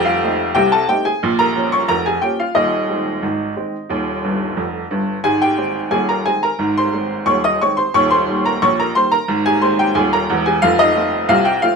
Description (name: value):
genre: ragtime piano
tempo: 89 BPM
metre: 2/4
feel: straight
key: Ab major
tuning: A4 = 439 Hz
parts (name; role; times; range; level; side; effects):
- clear upright piano; solo; 0.0-11.8 s; Eb1 to Eb6; -14 LUFS; equal; none
room: moderate studio reverb, RT60 1.0 s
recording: minimal, uncompressed stereo recording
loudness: -14 LUFS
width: side -5 dB against mid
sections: 0.0-11.8 A section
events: upright piano fill 4.2-5.3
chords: 0.0 F7; 1.2 Bbm; 2.6 Ab/Eb; 3.9 Eb; 5.3 Ab; 8.0 Eb7; 9.3 Ab; 10.6 F7